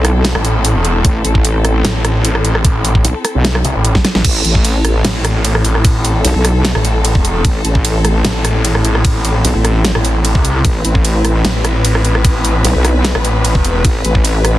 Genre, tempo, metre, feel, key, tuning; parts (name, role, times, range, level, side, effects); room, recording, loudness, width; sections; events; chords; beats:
heavy wobble dubstep; 150 BPM; 4/4; half-time; A minor; A4 = 440 Hz
dark chamber string section; sustained chords; 0.0-14.6 s; C4 to B4; -20 LUFS; left 2 dB; sidechain pumping
wobble bass; bass; 0.0-14.6 s; A1 to B1; -13 LUFS; equal; chorus, overdrive
dubstep drum kit; drums; 0.0-14.5 s; crash cymbal, hi-hat, ride cymbal, rim click, snare drum; -18 LUFS; right 1 dB
snarling distorted saw bass; bass; 0.4-13.8 s; E1 to C2; -14 LUFS; equal; distortion, overdrive
electronic kick drum; drums; 1.0-14.2 s; -13 LUFS; equal
digital ambience; dense, heavily limited modern master; -11 LUFS; side -15 dB against mid
0.0-4.2 A section; 4.2-14.6 A section
drop 0.0-4.2, 4.2-14.6; drum fill 3.9-4.2
0.0 Am
0.25 0.65 | 1.05 1.45 1.85 2.25 | 2.65 3.05 3.45 3.85 | 4.25 4.65 5.05 5.45 | 5.85 6.25 6.65 7.05 | 7.45 7.85 8.25 8.65 | 9.05 9.45 9.85 10.25 | 10.65 11.05 11.45 11.85 | 12.25 12.65 13.05 13.45 | 13.85 14.25